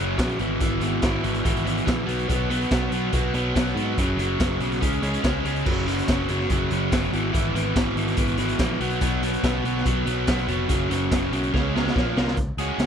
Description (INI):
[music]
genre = indie rock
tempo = 143 BPM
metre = 4/4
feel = straight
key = unclear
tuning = A4 = 440 Hz
[part]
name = overdriven electric guitar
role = riff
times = 0.0-12.9 s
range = E2 to Ab4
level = -24 LUFS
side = equal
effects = none
[part]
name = picked electric bass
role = bass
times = 0.0-12.9 s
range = F1 to Ab2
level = -28 LUFS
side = equal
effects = none
[part]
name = raw garage drum kit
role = drums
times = 0.2-12.9 s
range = crash cymbal, hi-hat, kick drum, snare drum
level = -26 LUFS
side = equal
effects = none
[sound]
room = little or no reverb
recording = none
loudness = -21 LUFS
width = side -8 dB against mid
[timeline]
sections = 0.0-12.4 A section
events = drum fill 11.5-12.4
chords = 0.4 E/G#; 2.1 B5; 4.0 Gb5; 4.8 Db5; 5.7 Gb5; 7.1 E/G#; 8.8 B5; 10.7 Gb5; 11.5 Db5; 12.0 Bb5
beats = 0.18 | 0.60 1.02 1.45 1.87 | 2.29 2.71 3.13 3.55 | 3.97 4.39 4.81 5.23 | 5.65 6.07 6.49 6.91 | 7.33 7.75 8.17 8.59 | 9.01 9.43 9.85 10.27 | 10.69 11.11 11.53 11.95 | 12.37 12.79